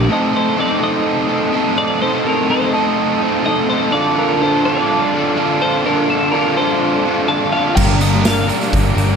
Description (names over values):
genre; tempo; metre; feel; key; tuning
rock, shoegaze and dream pop; 125 BPM; 4/4; straight; unclear; A4 = 438 Hz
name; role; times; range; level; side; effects
twelve-string electric guitar; melody; 0.0-8.5 s; A4 to A5; -21 LUFS; left 2 dB; slapback echo
lush unison pad; sustained chords; 0.0-9.2 s; G4 to Eb6; -27 LUFS; right 1 dB; none
biting overdriven guitar; riff; 0.0-9.2 s; G2 to Bb4; -18 LUFS; right 10 dB; reverse reverb
raw garage guitar; riff; 0.0-9.2 s; G2 to Bb4; -18 LUFS; left 9 dB; overdrive, analog chorus
vintage muted picked electric bass; bass; 0.0-0.1, 7.8-9.2 s; G1; -16 LUFS; equal; none
big rock drum kit; drums; 7.8-9.1 s; crash cymbal, hi-hat, kick drum, snare drum; -20 LUFS; equal; none
tambourine; percussion; 8.0-9.1 s; none; -33 LUFS; right 11 dB; none
room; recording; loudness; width
moderate lush hall reverb, RT60 1.8 s; none; -13 LUFS; side -6 dB against mid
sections
0.1-9.2 A section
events
none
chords
0.1 Adim; 3.9 Dm7; 7.8 Gm7